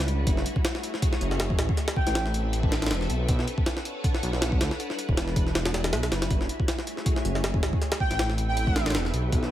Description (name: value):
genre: drum and bass, jungle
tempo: 159 BPM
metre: 4/4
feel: swing 54% on 16ths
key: unclear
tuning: A4 = 436 Hz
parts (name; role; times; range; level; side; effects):
- soft string machine; sustained chords; 0.0-9.5 s; G3 to F#5; -33 LUFS; equal; ensemble chorus
- dark detuned saw bass; bass; 0.0-9.5 s; E1 to D2; -28 LUFS; equal; tube saturation
- jungle sampler-style drum kit; drums; 0.1-9.5 s; hi-hat, kick drum, snare drum; -26 LUFS; equal; studio ambience
- airy dreamy lead; melody; 2.0-2.2, 8.0-8.9 s; G5; -32 LUFS; right 1 dB; chorus, dub echo
room: little or no reverb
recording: none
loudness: -24 LUFS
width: side -12 dB against mid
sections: 0.0-9.5 A section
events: kick drops out 5.5-6.3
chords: 0.3 F#m9; 1.8 Am9; 3.3 Bm9; 4.8 Em9; 6.3 F#m9; 7.8 Am9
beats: | 0.27 0.64 1.02 1.40 | 1.78 2.15 2.53 2.91 | 3.29 3.66 4.04 4.42 | 4.79 5.17 5.55 5.93 | 6.30 6.68 7.06 7.44 | 7.81 8.19 8.57 8.95 | 9.32